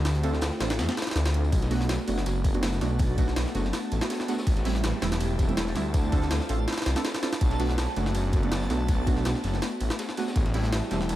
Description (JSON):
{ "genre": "drum and bass, jungle", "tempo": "163 BPM", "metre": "4/4", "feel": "swing 54% on 16ths", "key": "B phrygian", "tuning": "A4 = 439 Hz", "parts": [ { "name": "airy breathy pad", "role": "sustained chords", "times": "0.0-11.2 s", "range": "A3 to G4", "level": "-35 LUFS", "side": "equal", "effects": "chorus, vintage 12-bit sampler grit" }, { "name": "detuned saw bass", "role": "bass", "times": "0.0-11.2 s", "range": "E1 to F2", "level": "-27 LUFS", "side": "equal", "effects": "none" }, { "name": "crunchy breakbeat drum kit", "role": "drums", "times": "0.1-11.2 s", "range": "hi-hat, snare drum, tambourine", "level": "-41 LUFS", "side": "left 3 dB", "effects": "high-pass filter on hats, high-pass filter on snare, high-pass filter on perc, high-pass filter on room, tape echo" }, { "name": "jungle sampler-style drum kit", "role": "drums", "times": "0.1-11.2 s", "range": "kick drum, ride cymbal, snare drum", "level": "-29 LUFS", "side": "equal", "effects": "overdrive" }, { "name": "deep mellow chord stab", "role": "stabs", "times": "0.2-11.0 s", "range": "G3 to A4", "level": "-32 LUFS", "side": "right 3 dB", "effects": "chorus, dub echo" }, { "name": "backwards swelling texture", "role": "texture", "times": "2.7-11.2 s", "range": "A5", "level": "-42 LUFS", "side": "right 2 dB", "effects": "built-in reverb" } ], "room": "light reverb, small room ambience", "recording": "echo-heavy mix", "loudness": "-24 LUFS", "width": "side -14 dB against mid", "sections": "0.0-1.5 A section; 1.5-11.2 A section", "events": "drop 0.0-1.5, 1.5-11.2", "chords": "0.1 Dm7; 1.5 Bm7; 4.5 Am7; 5.9 Dm7; 7.4 Bm7; 10.4 Am7", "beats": "| 0.05 0.42 0.79 1.16 | 1.52 1.89 2.26 2.63 | 3.00 3.36 3.73 4.10 | 4.47 4.84 5.20 5.57 | 5.94 6.31 6.68 7.04 | 7.41 7.78 8.15 8.52 | 8.88 9.25 9.62 9.99 | 10.36 10.73 11.09" }